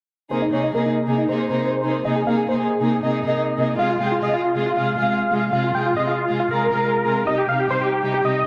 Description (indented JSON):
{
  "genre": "trance",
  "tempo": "138 BPM",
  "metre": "4/4",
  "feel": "straight",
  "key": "Ab major",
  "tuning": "A4 = 439 Hz",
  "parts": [
    { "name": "big supersaw lead", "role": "melody", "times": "0.3-8.5 s", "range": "Eb4 to G5", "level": "-23 LUFS", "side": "equal", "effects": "low-pass filter, dub echo" },
    { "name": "dark symphonic string section", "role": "sustained chords", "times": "0.3-8.4 s", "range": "C3 to Ab4", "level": "-24 LUFS", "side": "equal", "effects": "none" }
  ],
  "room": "moderate lush hall reverb, RT60 2.4 s",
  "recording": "dense, heavily limited modern master",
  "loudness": "-21 LUFS",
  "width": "mono",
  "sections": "0.3-8.5 A section",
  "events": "filter sweep on supersaw synth 0.3-8.5",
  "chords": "0.3 Abadd9; 3.8 Fm; 7.3 Cm"
}